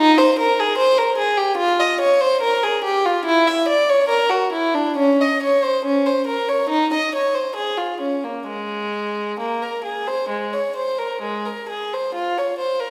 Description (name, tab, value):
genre	classical, baroque-style suite movement for unaccompanied violin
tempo	63-76 BPM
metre	4/4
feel	rubato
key	Ab major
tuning	A4 = 442 Hz
part	warm violin	solo	0.0-12.9 s	Ab3 to E5	-20 LUFS	equal	none
room	wet recital hall reverb, RT60 1.7 s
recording	heard from further back in the room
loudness	-20 LUFS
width	mono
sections	0.0-12.1 A section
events	none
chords	none